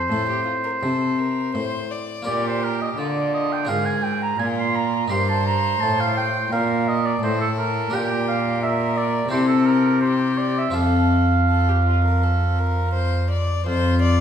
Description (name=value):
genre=classical, baroque-style sonata movement with continuo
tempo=84 BPM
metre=4/4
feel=straight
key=F major from 7.9 s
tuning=A4 = 440 Hz
part: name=clear oboe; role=second line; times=0.0-14.2 s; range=F4 to C6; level=-24 LUFS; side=right 4 dB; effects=none
part: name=harpsichord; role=accompaniment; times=0.0-14.2 s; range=F2 to Bb4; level=-25 LUFS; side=left 3 dB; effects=none
part: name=rich cello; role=bass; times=0.0-14.2 s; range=F2 to D3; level=-22 LUFS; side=right 1 dB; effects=none
part: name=warm violin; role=melody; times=0.1-14.2 s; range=F4 to D5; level=-29 LUFS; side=left 5 dB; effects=none
room=wet recital hall reverb, RT60 1.3 s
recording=recorded in a church or concert hall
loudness=-19 LUFS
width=side -8 dB against mid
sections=0.0-13.7 A section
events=none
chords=0.0 F; 2.3 Bb; 3.7 Bb7/Ab; 5.1 Eb/G; 7.9 Gm/Bb; 9.3 C; 10.8 F; 13.7 F5